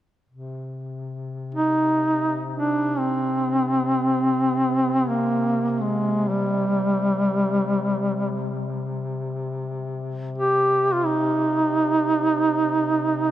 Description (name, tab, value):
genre	caucasian folk, Caucasian lament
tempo	free time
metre	none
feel	none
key	C minor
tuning	A4 = 440 Hz
part	dark duduk	drone	0.3-13.3 s	C3	-30 LUFS	left 2 dB	none
part	mellow duduk	melody	1.5-13.3 s	G3 to G4	-20 LUFS	right 1 dB	none
room	wet cathedral reverb, RT60 5.0 s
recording	none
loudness	-20 LUFS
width	side -12 dB against mid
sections	0.3-13.3 A section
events	none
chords	none